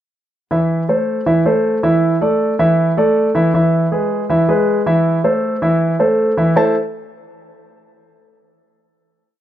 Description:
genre	latin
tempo	158 BPM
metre	4/4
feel	straight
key	A harmonic minor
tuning	A4 = 440 Hz
part	warm grand piano	solo	0.5-6.7 s	E3 to A5	-13 LUFS	equal	slapback echo
room	studio reverb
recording	dry, close 1970s-style studio recording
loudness	-13 LUFS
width	side -11 dB against mid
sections	0.5-6.6 A section; 6.6-8.1 final chord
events	none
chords	0.5 Am; 2.0 Dsus2; 3.5 E; 5.1 Am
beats	| 0.51 0.89 1.27 1.65 | 2.03 2.40 2.78 3.16 | 3.54 3.92 4.30 4.68 | 5.06 5.43 5.81 6.19 | 6.57

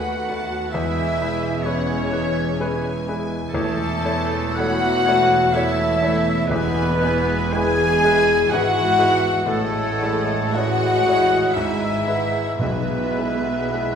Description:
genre	classical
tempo	53-66 BPM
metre	3/4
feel	rubato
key	E major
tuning	A4 = 440 Hz
part	clear grand piano	melody	0.0-14.0 s	B1 to C#5	-25 LUFS	left 1 dB	none
part	rich studio violin section	melody	0.0-14.0 s	E5 to B5	-36 LUFS	left 2 dB	none
part	clear clarinet	second line	0.0-14.0 s	B4 to E5	-33 LUFS	left 2 dB	none
part	clear oboe	second line	0.0-14.0 s	A4 to G#5	-31 LUFS	right 2 dB	none
part	rich studio violin section	second line	0.0-14.0 s	A4 to G#5	-29 LUFS	left 3 dB	none
part	silver concert flute	second line	0.0-14.0 s	A4 to G#5	-30 LUFS	right 1 dB	none
part	dark bassoon	accompaniment	0.0-14.0 s	G#3 to A3	-33 LUFS	right 1 dB	none
part	rich symphonic viola section	accompaniment	0.0-14.0 s	A3 to G#4	-30 LUFS	right 3 dB	none
part	mellow French horn section	sustained chords	0.0-14.0 s	A3 to G#4	-24 LUFS	left 2 dB	none
part	mellow trumpet section	stabs	0.0-14.0 s	A4 to G#5	-27 LUFS	left 2 dB	none
part	clear symphonic double bass section	bass	0.0-14.0 s	E1 to D#2	-29 LUFS	right 3 dB	none
part	rich symphonic cello section	bass	0.0-14.0 s	D#2 to B2	-30 LUFS	right 3 dB	none
part	mellow trombone section	sustained chords	0.7-14.0 s	E3 to A3	-32 LUFS	right 4 dB	none
part	timpani	percussion	3.5-8.0, 12.6-14.0 s	E2 to B2	-31 LUFS	equal	none
room	wet recital hall reverb, RT60 1.6 s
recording	recorded in a church or concert hall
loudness	-18 LUFS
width	side -7 dB against mid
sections	0.0-14.0 A section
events	none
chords	0.0 B7/D#; 0.7 E; 3.5 A/E; 6.5 E; 9.5 Amaj7; 11.5 E/G#; 12.6 E/B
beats	| 0.72 1.64 2.57 | 3.52 4.57 5.54 | 6.48 7.53 8.51 | 9.47 10.55 11.55 | 12.60 13.72

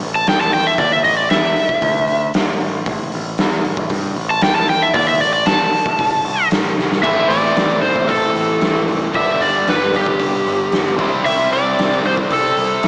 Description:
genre	blues rock power trio and southern rock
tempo	115 BPM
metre	4/4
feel	straight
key	A minor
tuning	A4 = 440 Hz
part	growling picked electric bass	bass	0.0-12.9 s	F1 to G2	-27 LUFS	equal	overdrive
part	raw garage drum kit	drums	0.0-12.9 s	crash cymbal, hi-hat, kick drum, snare drum	-22 LUFS	equal	none
part	overdriven slide guitar	melody	0.2-12.9 s	G4 to A5	-19 LUFS	equal	none
part	distorted electric guitar	riff	7.0-12.9 s	G2 to E4	-22 LUFS	equal	distortion
room	moderate lush hall reverb, RT60 2.0 s, small room ambience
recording	big arena sound, small speaker sound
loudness	-16 LUFS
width	mono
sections	0.0-7.0 A section; 7.0-12.9 B section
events	electric slide guitar solo 0.0-7.0; drum fill 6.8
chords	0.3 Emadd11; 0.8 A5; 1.8 Dsus2; 2.3 A5; 4.4 Emadd11; 4.9 Am; 9.1 G; 11.0 C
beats	0.26 | 0.78 1.30 1.82 2.34 | 2.86 3.38 3.90 4.42 | 4.94 5.46 5.99 6.51 | 7.03 7.56 8.08 8.61 | 9.13 9.66 10.19 10.71 | 11.24 11.77 12.29 12.82

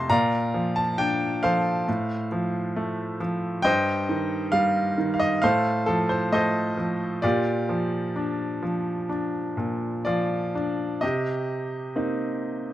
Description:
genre	classical, lyrical solo piano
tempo	60-68 BPM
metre	4/4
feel	rubato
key	C dorian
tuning	A4 = 440 Hz
part	bright grand piano	solo	0.0-12.7 s	F2 to C6	-23 LUFS	equal	none
room	light reverb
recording	close, detailed microphones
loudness	-23 LUFS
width	side -13 dB against mid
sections	0.0-11.0 A section; 11.0-12.7 B section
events	none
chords	0.1 Bbadd9; 1.9 F/A; 3.6 Cm/G; 5.4 F/A; 7.2 Bb6; 11.0 Cm7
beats	| 0.10 0.99 1.87 2.75 | 3.64 4.54 5.43 6.33 | 7.24 8.16 9.10 10.07 | 11.03 11.96

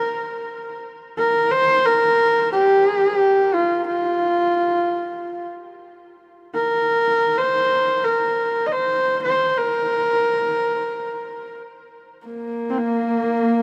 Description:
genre	mongolian traditional, Mongolian folk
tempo	free time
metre	none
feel	none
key	unclear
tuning	A4 = 439 Hz
part	clear horsehead fiddle	melody	0.0-13.6 s	Bb3 to Eb5	-20 LUFS	equal	none
part	rich horsehead fiddle	drone	12.3-13.6 s	Bb3	-26 LUFS	equal	none
room	light reverb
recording	none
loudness	-20 LUFS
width	mono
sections	0.0-1.5 A section; 1.5-12.3 B section; 12.3-13.6 C section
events	none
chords	none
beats	free time

